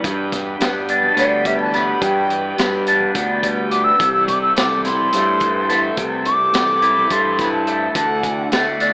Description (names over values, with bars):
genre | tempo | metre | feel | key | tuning
psychedelic rock | 212 BPM (eighths) | 7/8 | straight | unclear | A4 = 438 Hz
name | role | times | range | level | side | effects
bright tonewheel organ | sustained chords | 0.0-8.9 s | D4 to G5 | -28 LUFS | right 1 dB | overdrive, slow rotary speaker
electric guitar through a small old amp | riff | 0.0-8.9 s | G2 to E4 | -20 LUFS | left 1 dB | phaser
fuzz picked electric bass | bass | 0.0-8.9 s | C2 to G2 | -24 LUFS | equal | overdrive
tanpura | drone | 0.0-8.9 s | E2 to E3 | -32 LUFS | equal | none
crunchy breakbeat drum kit | drums | 0.0-8.9 s | hi-hat, kick drum, snare drum | -22 LUFS | equal | none
congas | percussion | 0.0-8.5 s | none | -40 LUFS | right 1 dB | none
mellow hollow silver concert flute | melody | 1.2-8.5 s | D5 to E6 | -17 LUFS | equal | digital delay
room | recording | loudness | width
light reverb | AM radio sound | -15 LUFS | side -25 dB against mid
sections
0.0-8.9 A section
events
flute solo 0.0-8.9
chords
0.0 G; 4.0 C6; 8.0 Dadd9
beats
| 0.04 0.33 0.61 0.89 1.17 1.46 1.74 | 2.02 2.31 2.59 2.87 3.15 3.44 3.72 | 4.00 4.28 4.57 4.85 5.13 5.41 5.70 | 5.98 6.26 6.54 6.83 7.11 7.39 7.67 | 7.96 8.24 8.52 8.80